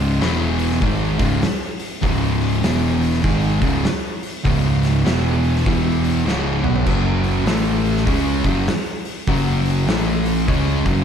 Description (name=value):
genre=stoner and doom metal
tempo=99 BPM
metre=4/4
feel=swing 62% on 8ths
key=C# minor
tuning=A4 = 440 Hz
part: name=overdriven electric guitar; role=riff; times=0.0-11.0 s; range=C#2 to C#4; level=-24 LUFS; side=equal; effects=none
part: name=thick fuzz guitar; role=riff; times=0.0-11.0 s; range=C#2 to C#4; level=-23 LUFS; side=left 8 dB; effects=distortion
part: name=thick fuzz guitar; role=riff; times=0.0-11.0 s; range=C#2 to C#4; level=-22 LUFS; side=right 8 dB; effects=distortion
part: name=overdriven picked electric bass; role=bass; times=0.0-11.0 s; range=C#1 to C#2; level=-24 LUFS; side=equal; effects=none
part: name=oversized low-tuned drum kit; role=drums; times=0.2-11.0 s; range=crash cymbal, hi-hat, kick drum, snare drum, toms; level=-23 LUFS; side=equal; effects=none
room=light reverb, small room ambience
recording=dark, warm production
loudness=-16 LUFS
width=side -8 dB against mid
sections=0.0-11.0 A section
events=drum fill 6.3-6.9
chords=0.2 E5; 0.8 C#5; 2.6 E5; 3.2 C#5; 5.1 E5; 6.3 C#5; 6.9 F#5; 7.5 A5; 8.1 F#5; 9.9 A5; 10.5 F#5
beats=0.22 0.82 1.43 | 2.03 2.64 3.24 3.85 | 4.45 5.05 5.66 6.26 | 6.86 7.47 8.07 8.68 | 9.28 9.88 10.48